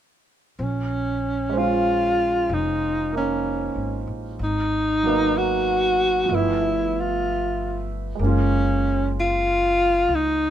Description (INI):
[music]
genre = jazz ballad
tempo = 63 BPM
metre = 4/4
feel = swing 68% on 8ths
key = Bb minor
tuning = A4 = 439 Hz
[part]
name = breathy alto saxophone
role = melody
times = 0.6-10.5 s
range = C4 to Gb4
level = -21 LUFS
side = equal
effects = none
[part]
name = upright bass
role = bass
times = 0.6-10.5 s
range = F1 to Db2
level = -27 LUFS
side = left 1 dB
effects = none
[part]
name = warm concert grand piano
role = accompaniment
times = 1.5-10.5 s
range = F3 to E5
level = -27 LUFS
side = right 5 dB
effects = none
[sound]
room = little or no reverb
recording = minimal, uncompressed stereo recording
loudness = -20 LUFS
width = side -10 dB against mid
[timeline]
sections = 0.6-10.5 A section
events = none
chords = 0.0 N.C.; 0.6 Bbm9; 4.4 Abm9; 6.3 G13; 8.2 Gbmaj9